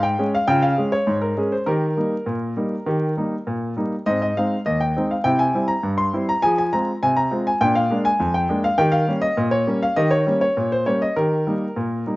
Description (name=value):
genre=ragtime piano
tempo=101 BPM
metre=2/4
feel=straight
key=unclear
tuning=A4 = 440 Hz
part: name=warm concert grand piano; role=solo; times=0.0-12.2 s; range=Eb2 to C6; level=-18 LUFS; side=equal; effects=slapback echo
room=little or no reverb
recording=recorded outdoors, with no room sound, vinyl crackle, nothing above 7.6 kHz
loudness=-18 LUFS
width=side -20 dB against mid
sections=0.0-12.2 A section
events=none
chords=0.0 Db; 1.7 Eb; 4.1 Ab; 5.2 C; 6.4 Fm; 7.6 Bb7; 8.8 Eb7; 11.2 Eb